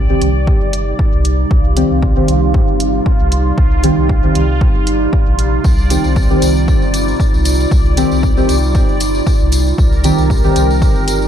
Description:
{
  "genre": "dub techno",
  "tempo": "116 BPM",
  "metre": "4/4",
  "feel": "swing 55% on 16ths",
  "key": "C minor",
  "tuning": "A4 = 440 Hz",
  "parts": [
    { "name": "warbly tape-like pad", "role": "sustained chords", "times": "0.0-11.3 s", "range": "C3 to G4", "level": "-20 LUFS", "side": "right 2 dB", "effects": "chorus, built-in reverb, sidechain pumping" },
    { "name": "soft dub sub bass", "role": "bass", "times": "0.0-11.3 s", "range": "G1 to C2", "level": "-16 LUFS", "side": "equal", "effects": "sidechain pumping" },
    { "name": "bubbling stepped-filter texture", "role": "texture", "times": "0.0-11.3 s", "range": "F4 to D5", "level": "-24 LUFS", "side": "right 1 dB", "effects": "chorus, built-in reverb, sidechain pumping" },
    { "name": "deep mellow chord stab", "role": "stabs", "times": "0.1-11.3 s", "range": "Eb3 to G4", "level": "-18 LUFS", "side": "equal", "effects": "chorus, phaser, sidechain pumping, dub echo" },
    { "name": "electronic hi-hat", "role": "drums", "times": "0.2-11.2 s", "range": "none", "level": "-25 LUFS", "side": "right 2 dB", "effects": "none" },
    { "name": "electronic kick drum", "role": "drums", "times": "0.5-10.9 s", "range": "none", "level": "-14 LUFS", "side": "equal", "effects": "none" },
    { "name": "tambourine", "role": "percussion", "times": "5.6-11.3 s", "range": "none", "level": "-26 LUFS", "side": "left 3 dB", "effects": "none" }
  ],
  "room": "digital ambience",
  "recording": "dark, warm production",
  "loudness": "-11 LUFS",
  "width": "side -9 dB against mid",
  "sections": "0.0-11.3 A section",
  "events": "none",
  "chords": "0.0 Cm"
}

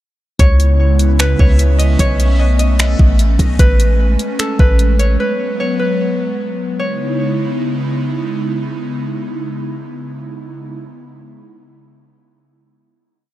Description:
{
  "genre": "hip hop, atmospheric cloud-rap",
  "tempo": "150 BPM",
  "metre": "4/4",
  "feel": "half-time",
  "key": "C# minor",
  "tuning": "A4 = 440 Hz",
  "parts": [
    { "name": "concert harp", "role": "melody", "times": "0.4-8.7 s", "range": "A4 to D#5", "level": "-21 LUFS", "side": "equal", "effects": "digital delay" },
    { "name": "airy breathy pad", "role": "sustained chords", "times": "0.4-10.8 s", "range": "C#3 to E4", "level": "-20 LUFS", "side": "equal", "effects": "chorus" },
    { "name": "warm 808-style bass", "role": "bass", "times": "0.4-5.2 s", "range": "A1 to C#2", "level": "-12 LUFS", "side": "equal", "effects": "none" },
    { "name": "smooth R&B drum kit", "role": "drums", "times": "0.4-5.1 s", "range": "finger snaps, hi-hat, kick drum", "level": "-12 LUFS", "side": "equal", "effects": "none" }
  ],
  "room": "little or no reverb",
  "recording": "none",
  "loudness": "-12 LUFS",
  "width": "side -14 dB against mid",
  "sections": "0.4-6.8 verse; 6.8-10.0 final chord",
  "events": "none",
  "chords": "0.4 C#m7; 2.0 B9; 3.6 Amaj9; 5.2 G#m7; 6.8 C#m7"
}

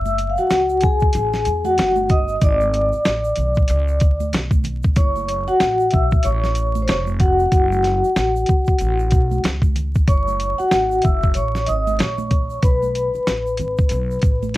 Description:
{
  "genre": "hip hop, jazz-hop",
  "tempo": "94 BPM",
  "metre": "4/4",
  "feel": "swing 60% on 16ths",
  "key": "unclear",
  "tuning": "A4 = 445 Hz",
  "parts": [
    { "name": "vibraphone with soft mallets", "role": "accompaniment", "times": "0.0-14.6 s", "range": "F#4 to E6", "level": "-19 LUFS", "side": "left 1 dB", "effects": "plate reverb" },
    { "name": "upright bass", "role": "bass", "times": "0.0-14.6 s", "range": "E#1 to E2", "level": "-23 LUFS", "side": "equal", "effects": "none" },
    { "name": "congas and tube shaker", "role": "percussion", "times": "0.1-14.5 s", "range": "none", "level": "-33 LUFS", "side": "right 6 dB", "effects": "none" },
    { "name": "lo-fi sampler-style drum kit", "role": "drums", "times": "0.2-14.6 s", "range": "hi-hat, kick drum, snare drum", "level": "-18 LUFS", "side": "equal", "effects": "none" }
  ],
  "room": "light reverb",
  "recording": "vinyl crackle",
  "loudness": "-16 LUFS",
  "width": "side -16 dB against mid",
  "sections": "0.0-10.1 A section; 10.1-14.6 A section",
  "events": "vibraphone solo 0.0-10.1, 10.1-14.6",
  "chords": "0.0 F#m9; 2.4 G#dim; 3.7 Bmadd9; 5.0 F#m7; 10.1 F#7(no3); 12.6 B5"
}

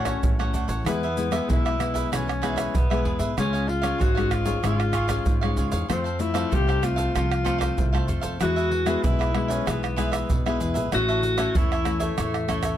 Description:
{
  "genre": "samba and choro",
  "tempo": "95 BPM",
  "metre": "4/4",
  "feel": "straight",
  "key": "unclear",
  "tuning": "A4 = 440 Hz",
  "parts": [
    { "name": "breathy tenor saxophone", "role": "second line", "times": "0.0-12.8 s", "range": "A3 to G4", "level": "-28 LUFS", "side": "left 2 dB", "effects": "none" },
    { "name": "cavaquinho", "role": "accompaniment", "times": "0.0-12.8 s", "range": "D4 to F#5", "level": "-31 LUFS", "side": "right 3 dB", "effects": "none" },
    { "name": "nylon-string guitar", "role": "accompaniment", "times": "0.0-12.8 s", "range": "G#2 to F#4", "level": "-29 LUFS", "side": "left 5 dB", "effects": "none" },
    { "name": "upright bass", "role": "bass", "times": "0.0-12.7 s", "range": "G#1 to G#2", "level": "-28 LUFS", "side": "equal", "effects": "none" },
    { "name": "egg shaker, surdo, pandeiro and tamborim", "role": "percussion", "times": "0.1-12.8 s", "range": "none", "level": "-26 LUFS", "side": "right 1 dB", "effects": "none" }
  ],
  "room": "little or no reverb",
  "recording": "close, detailed microphones",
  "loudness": "-21 LUFS",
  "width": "side -11 dB against mid",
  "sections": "0.0-12.8 A section",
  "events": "tenor saxophone solo 0.0-12.8",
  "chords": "0.0 Dmaj7; 0.9 E; 3.4 C#; 5.9 F; 8.4 E; 10.9 A"
}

